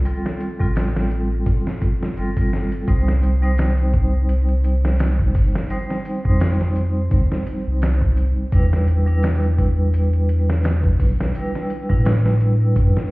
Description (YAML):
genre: trip hop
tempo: 85 BPM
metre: 4/4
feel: swing 55% on 16ths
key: unclear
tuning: A4 = 440 Hz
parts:
  - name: vibraphone with hard mallets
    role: accompaniment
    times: 0.0-13.1 s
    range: G3 to C5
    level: -25 LUFS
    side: right 1 dB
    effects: tremolo, vintage 12-bit sampler grit, tape echo
  - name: dusty soul sampler-style drum kit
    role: drums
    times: 0.1-13.1 s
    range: hi-hat, kick drum, snare drum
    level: -21 LUFS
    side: equal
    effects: none
  - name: soft dub sub bass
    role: bass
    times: 0.6-12.9 s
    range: G1 to A2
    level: -18 LUFS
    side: equal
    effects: none
room: little or no reverb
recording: heard muffled through a wall, stone room reverb, vinyl crackle, EQ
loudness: -17 LUFS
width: side -22 dB against mid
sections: 0.0-2.9 A section; 2.9-13.1 B section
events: none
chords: 0.0 Fadd9; 2.9 Cm; 8.5 Em7